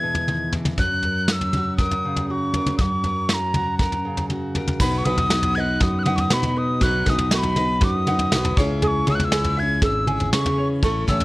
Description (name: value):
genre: indie folk with a building arrangement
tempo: 119 BPM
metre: 4/4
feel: straight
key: B mixolydian from 4.8 s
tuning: A4 = 445 Hz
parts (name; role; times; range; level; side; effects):
- breathy mellow mid whistle; melody; 0.0-11.2 s; A#5 to G#6; -24 LUFS; equal; none
- fingerpicked steel-string acoustic guitar; accompaniment; 0.0-6.8 s; B2 to A#4; -30 LUFS; equal; none
- fingered electric bass; bass; 0.0-11.2 s; G#1 to C#3; -25 LUFS; equal; none
- soft brush drum kit; drums; 0.1-11.2 s; crash cymbal, kick drum, snare drum, toms; -23 LUFS; equal; none
- picked steel-string acoustic guitar; accompaniment; 4.8-11.2 s; A2 to B4; -28 LUFS; left 3 dB; none
- ukulele; arpeggios; 4.8-11.2 s; F#4 to G#5; -28 LUFS; right 4 dB; none
room: studio reverb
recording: worn, warbling old tape, cassette tape, warbly pitch drift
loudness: -19 LUFS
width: side -20 dB against mid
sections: 0.0-4.8 A section; 4.8-11.2 B section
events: none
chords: 0.0 E; 0.8 F#; 4.8 B; 8.6 C#m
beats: 0.28 | 0.79 1.29 1.79 2.29 | 2.80 3.30 3.80 4.30 | 4.81 5.31 5.81 6.32 | 6.82 7.32 7.82 8.32 | 8.83 9.33 9.83 10.33 | 10.83